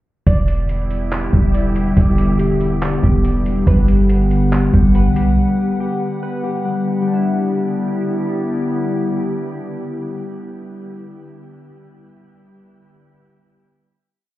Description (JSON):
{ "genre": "hip hop, atmospheric cloud-rap", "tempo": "141 BPM", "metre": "4/4", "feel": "half-time", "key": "E minor", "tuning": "A4 = 439 Hz", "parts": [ { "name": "glassy FM pad", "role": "sustained chords", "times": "0.4-10.7 s", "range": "D3 to F#5", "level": "-19 LUFS", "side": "left 1 dB", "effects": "ensemble chorus, built-in reverb, sidechain pumping" }, { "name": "glassy digital keys", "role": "arpeggios", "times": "0.3-10.7 s", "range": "G3 to D5", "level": "-25 LUFS", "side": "left 1 dB", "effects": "chorus, phaser, low-pass filter, digital delay" }, { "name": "clean 808-style bass", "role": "bass", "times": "0.3-5.4 s", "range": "E1 to B1", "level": "-17 LUFS", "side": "right 1 dB", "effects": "none" }, { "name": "lo-fi sampler-style drum kit", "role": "drums", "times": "0.3-5.3 s", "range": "handclaps, hi-hat, kick drum", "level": "-17 LUFS", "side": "equal", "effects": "overdrive" }, { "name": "wind-like tuned noise texture", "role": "texture", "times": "0.8-3.6 s", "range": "G4 to D6", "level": "-35 LUFS", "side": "right 1 dB", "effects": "built-in reverb" } ], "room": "digital ambience", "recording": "heard muffled through a wall, club reverb, EQ", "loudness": "-15 LUFS", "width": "side -15 dB against mid", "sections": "0.3-7.1 verse; 7.1-10.5 final chord", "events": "none", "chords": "0.3 Em7; 3.7 Gmaj7; 7.1 Em7", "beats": "| 0.27 0.69 1.12 1.54 | 1.97 2.39 2.82 3.25 | 3.67 4.10 4.52 4.95 | 5.37 5.80 6.22 6.65 | 7.08 7.50 7.93 8.35 | 8.78 9.20 9.63 10.05" }